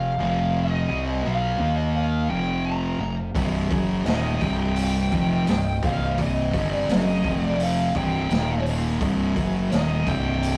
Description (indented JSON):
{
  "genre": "stoner and doom metal",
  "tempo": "85 BPM",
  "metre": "4/4",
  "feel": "straight",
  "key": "C minor",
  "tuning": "A4 = 440 Hz",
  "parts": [
    { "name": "fuzz lead guitar", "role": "melody", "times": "0.0-10.6 s", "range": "Eb5 to Bb5", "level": "-31 LUFS", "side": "equal", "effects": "wah, distortion" },
    { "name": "organ-like drone", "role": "sustained chords", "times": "0.0-10.6 s", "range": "C4 to G5", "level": "-40 LUFS", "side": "equal", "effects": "none" },
    { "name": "thick fuzz guitar", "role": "riff", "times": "0.0-10.6 s", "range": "C2 to Eb4", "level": "-32 LUFS", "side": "equal", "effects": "none" },
    { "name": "thick fuzz guitar", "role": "riff", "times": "0.0-10.6 s", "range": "C2 to Eb4", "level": "-27 LUFS", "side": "equal", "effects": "distortion" },
    { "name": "growling fingered electric bass", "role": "bass", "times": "0.0-10.6 s", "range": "C1 to Eb2", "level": "-31 LUFS", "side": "equal", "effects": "overdrive" },
    { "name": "raw garage drum kit", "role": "drums", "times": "3.4-10.6 s", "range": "hi-hat, kick drum, snare drum", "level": "-30 LUFS", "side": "equal", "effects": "none" }
  ],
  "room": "moderate small room reverb, RT60 0.5 s",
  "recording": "rough rehearsal-room recording, tube saturation",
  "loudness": "-23 LUFS",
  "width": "mono",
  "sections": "0.0-10.6 A section",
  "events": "none",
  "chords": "0.0 F5; 1.6 Eb5; 2.3 F5; 3.4 Cm; 7.2 F5; 8.0 C5; 8.3 Eb5; 9.0 Cm"
}